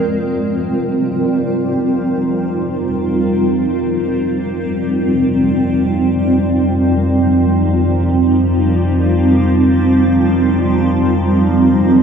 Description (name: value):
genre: ambient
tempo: free time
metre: none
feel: none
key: unclear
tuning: A4 = 440 Hz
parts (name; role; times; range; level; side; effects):
- granular cloud pad; sustained chords; 0.0-12.0 s; G3 to Bb4; -13 LUFS; right 1 dB; built-in reverb
- deep rumbling drone; bass; 1.9-12.0 s; F2; -20 LUFS; equal; built-in reverb
- analog drone; drone; 0.0-12.0 s; F3; -27 LUFS; left 1 dB; chorus, phaser
room: wet concert hall reverb, RT60 2.0 s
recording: none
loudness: -12 LUFS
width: side -7 dB against mid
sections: 0.0-12.0 A section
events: fade-in on synth drone 0.0-12.0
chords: 0.0 Eb/F